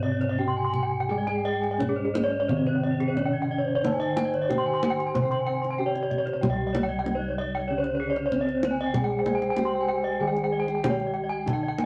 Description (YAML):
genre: Balinese gamelan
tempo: 85-95 BPM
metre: 4/4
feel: straight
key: C pelog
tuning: A4 = 441 Hz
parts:
  - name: gamelan-type bronze metallophone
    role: melody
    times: 0.0-11.9 s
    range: C4 to C5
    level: -33 LUFS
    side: equal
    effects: none
  - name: gamelan-type bronze metallophone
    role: accompaniment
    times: 0.0-11.9 s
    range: C3 to C4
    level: -37 LUFS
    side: equal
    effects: none
  - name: gamelan-type bronze metallophone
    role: arpeggios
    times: 0.0-11.9 s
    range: Ab4-20c to C6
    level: -35 LUFS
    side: equal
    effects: none
  - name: gamelan-type bronze metallophone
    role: arpeggios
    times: 0.0-11.8 s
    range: Ab4-20c to C6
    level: -33 LUFS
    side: equal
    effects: none
  - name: gamelan-type bossed gongs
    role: bass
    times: 0.0-11.9 s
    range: C2 to Ab4-20c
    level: -35 LUFS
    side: equal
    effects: none
  - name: kendang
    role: percussion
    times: 0.2-11.9 s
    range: none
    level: -32 LUFS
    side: equal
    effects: none
  - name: breathy mellow low xiao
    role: second line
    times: 1.9-10.7 s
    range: Ab4-22c to G5-31c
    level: -34 LUFS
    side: equal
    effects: none
room: wet studio reverb, RT60 0.8 s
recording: none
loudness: -26 LUFS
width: mono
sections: 0.0-6.4 A section; 6.4-11.9 B section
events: none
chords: none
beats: 0.38 | 1.09 1.79 2.48 3.16 | 3.83 4.49 5.15 5.79 | 6.42 7.05 7.68 8.31 | 8.94 9.57 10.21 10.84 | 11.46